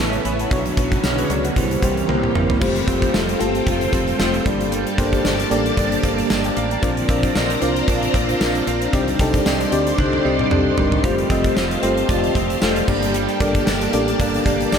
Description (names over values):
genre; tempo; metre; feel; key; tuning
1980s-style pop; 114 BPM; 4/4; swing 55% on 16ths; unclear; A4 = 441 Hz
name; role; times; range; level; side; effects
FM electric piano with soft pad layer; accompaniment; 0.0-14.8 s; G2 to C#6; -21 LUFS; left 2 dB; chorus, tremolo, shimmer reverb
phased string machine; sustained chords; 0.0-14.8 s; C#3 to C6; -24 LUFS; equal; ensemble chorus, phaser, shimmer reverb
direct-recorded clean electric guitar; riff; 0.0-14.8 s; E3 to F4; -26 LUFS; right 6 dB; analog chorus, analog delay, shimmer reverb
woody fretless electric bass; bass; 0.0-14.8 s; F1 to D2; -26 LUFS; equal; none
gated 80s drum kit; drums; 0.1-14.8 s; crash cymbal, hi-hat, kick drum, snare drum, tambourine, toms; -22 LUFS; equal; none
room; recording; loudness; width
wet huge ambient reverb, RT60 6.9 s; dreamy mix soaked in reverb; -16 LUFS; side -7 dB against mid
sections
0.0-2.6 A section; 2.6-14.8 A section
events
drum fill 2.1-2.6, 10.0-11.0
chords
0.0 Aadd9; 0.5 Bmadd9; 1.6 C7; 2.6 Fadd9; 4.5 Gmadd9; 6.8 Bbadd9; 8.9 Cmadd9; 11.0 Fadd9; 12.9 Gmadd9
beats
| 0.51 1.04 1.56 2.09 | 2.62 3.14 3.67 4.20 | 4.72 5.25 5.78 6.30 | 6.83 7.35 7.88 8.41 | 8.93 9.46 9.99 10.51 | 11.04 11.56 12.09 12.62 | 13.14 13.67 14.20 14.72